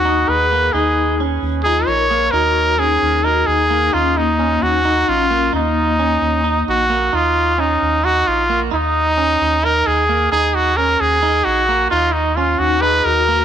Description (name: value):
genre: progressive instrumental, progressive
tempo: 263 BPM (eighths)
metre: 7/8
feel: straight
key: Eb minor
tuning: A4 = 440 Hz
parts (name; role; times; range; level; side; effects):
- bright trumpet; melody; 0.0-13.4 s; Eb4 to Db5; -15 LUFS; equal; tape echo
- vibraphone with medium mallets; second line; 0.0-6.9, 12.6-13.4 s; Bb3 to Bb4; -22 LUFS; left 12 dB; none
- rubbery square bass; bass; 0.0-13.4 s; Bb1 to Eb2; -22 LUFS; equal; none
- clean electric guitar; arpeggios; 0.1-13.4 s; Bb3 to Eb4; -23 LUFS; right 13 dB; spring reverb
room: light reverb, studio reverb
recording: 1960s-style stereo with parts hard left and right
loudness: -14 LUFS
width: side -9 dB against mid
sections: 0.0-7.1 A section; 7.1-13.4 A section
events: none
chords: 0.0 Abm7/Eb; 0.7 Eb5; 2.3 Ab5/Eb; 3.9 Eb5; 8.7 Ab5/Eb; 10.3 Ebm7; 11.9 Ebm9